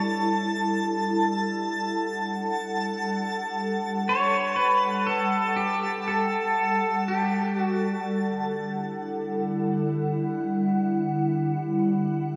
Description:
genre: ambient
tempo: free time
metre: none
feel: none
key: unclear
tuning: A4 = 444 Hz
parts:
  - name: glassy FM pad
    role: sustained chords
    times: 0.0-12.4 s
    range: D3 to F#5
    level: -28 LUFS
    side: equal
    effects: ensemble chorus, built-in reverb, phaser
  - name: bowed-like drone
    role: drone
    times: 0.0-8.2 s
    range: G3 to D4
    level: -49 LUFS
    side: equal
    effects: none
  - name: twinkling granular texture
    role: texture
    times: 0.0-8.1 s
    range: A5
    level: -33 LUFS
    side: equal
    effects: built-in reverb
  - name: pedal steel guitar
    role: melody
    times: 4.1-7.8 s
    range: G4 to C#5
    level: -27 LUFS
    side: equal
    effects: tape echo
room: wet lush hall reverb, RT60 2.9 s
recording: none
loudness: -26 LUFS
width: mono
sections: 0.0-8.1 A section; 8.1-12.4 B section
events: none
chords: 0.0 A7(no3); 8.1 Em9

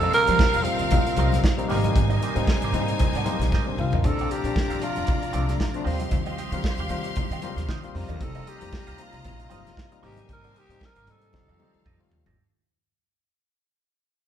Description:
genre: disco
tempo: 115 BPM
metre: 4/4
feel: swing 56% on 16ths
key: unclear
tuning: A4 = 440 Hz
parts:
  - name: growling tenor saxophone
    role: melody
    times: 0.0-12.1 s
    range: F4 to Bb4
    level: -25 LUFS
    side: right 1 dB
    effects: none
  - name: clear studio string section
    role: second line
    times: 0.0-12.4 s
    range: C4 to C6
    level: -34 LUFS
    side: left 2 dB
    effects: none
  - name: barky reed electric piano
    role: accompaniment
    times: 0.0-12.4 s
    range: F3 to F4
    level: -31 LUFS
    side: left 3 dB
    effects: overdrive
  - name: semi-hollow electric guitar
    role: accompaniment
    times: 0.0-12.4 s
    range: C4 to F5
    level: -37 LUFS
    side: right 6 dB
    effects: wah
  - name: percussive tonewheel organ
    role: sustained chords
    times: 0.0-12.4 s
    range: Bb2 to Bb4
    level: -35 LUFS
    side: right 1 dB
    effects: fast rotary speaker
  - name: upright bass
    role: bass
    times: 0.0-12.4 s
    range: F1 to F3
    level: -28 LUFS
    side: right 1 dB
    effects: none
  - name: warm soul drum kit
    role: drums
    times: 0.0-12.4 s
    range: hi-hat, kick drum, snare drum, toms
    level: -25 LUFS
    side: right 1 dB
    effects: none
  - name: congas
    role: percussion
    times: 0.1-12.4 s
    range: none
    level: -34 LUFS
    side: left 5 dB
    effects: none
room: moderate large studio reverb, RT60 1.2 s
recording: band playing live in one room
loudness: -22 LUFS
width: side -10 dB against mid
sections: 0.0-12.4 A section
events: fade-out 0.0-12.4; drum fill 3.5-4.0, 11.3-12.4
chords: 0.0 F7sus4; 1.7 Abmaj9; 4.0 Bbmaj9; 5.9 Eb69; 7.9 F7sus4; 10.0 Abmaj9; 11.3 F9

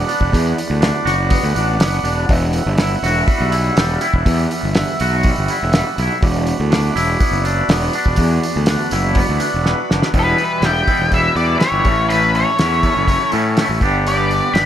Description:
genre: psychedelic rock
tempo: 122 BPM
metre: 4/4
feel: straight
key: E dorian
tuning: A4 = 440 Hz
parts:
  - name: hand-pumped harmonium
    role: sustained chords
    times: 0.0-14.7 s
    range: E4 to B5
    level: -25 LUFS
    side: right 8 dB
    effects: none
  - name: twangy electric guitar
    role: riff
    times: 0.0-14.7 s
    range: E2 to G4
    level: -20 LUFS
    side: left 1 dB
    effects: tremolo, double-tracked left and right
  - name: fuzz fingered electric bass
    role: bass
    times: 0.0-14.7 s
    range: E1 to A2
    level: -18 LUFS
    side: equal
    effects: overdrive
  - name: cloth-damped thuddy drum kit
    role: drums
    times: 0.1-14.7 s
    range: hi-hat, kick drum, snare drum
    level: -19 LUFS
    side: equal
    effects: none
  - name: octave-fuzz lead guitar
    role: melody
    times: 10.2-14.7 s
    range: B4 to B5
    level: -18 LUFS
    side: left 2 dB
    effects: distortion, analog delay
room: little or no reverb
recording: none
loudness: -14 LUFS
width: side -10 dB against mid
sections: 0.0-10.1 A section; 10.1-14.7 B section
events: drum fill 9.7-10.1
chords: 0.0 Bm/E; 2.3 Emadd9; 6.2 Bm/E; 10.1 Em; 11.9 A; 13.8 G

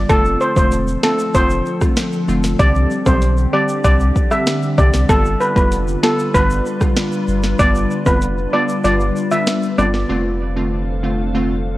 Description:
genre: dancehall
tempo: 96 BPM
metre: 4/4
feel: straight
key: unclear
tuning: A4 = 440 Hz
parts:
  - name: glassy wavetable pluck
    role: accompaniment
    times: 0.0-11.6 s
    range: D3 to G4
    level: -21 LUFS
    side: equal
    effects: chorus
  - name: warm sub bass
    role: bass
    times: 0.0-11.8 s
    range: E1 to C2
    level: -19 LUFS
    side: equal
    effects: none
  - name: steel pan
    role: melody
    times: 0.1-9.9 s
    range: A4 to E5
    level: -19 LUFS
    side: equal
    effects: ping-pong delay
  - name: glassy FM pad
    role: sustained chords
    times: 0.5-11.8 s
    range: D3 to F5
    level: -24 LUFS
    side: left 2 dB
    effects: ensemble chorus, built-in reverb, sidechain pumping
  - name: afro-pop drum kit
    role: drums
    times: 0.1-10.1 s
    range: hi-hat, kick drum, rim click, snare drum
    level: -18 LUFS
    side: equal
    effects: none
  - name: egg shaker and timbales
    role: percussion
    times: 0.1-10.1 s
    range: none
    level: -29 LUFS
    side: equal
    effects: none
room: light reverb, digital ambience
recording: worn, warbling old tape, cassette tape, warbly pitch drift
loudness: -14 LUFS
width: side -16 dB against mid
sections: 0.0-10.1 A section; 10.1-11.8 B section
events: kick muted 8.8-10.1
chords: 0.1 F6; 2.6 Csus2; 5.1 G7; 10.1 F6

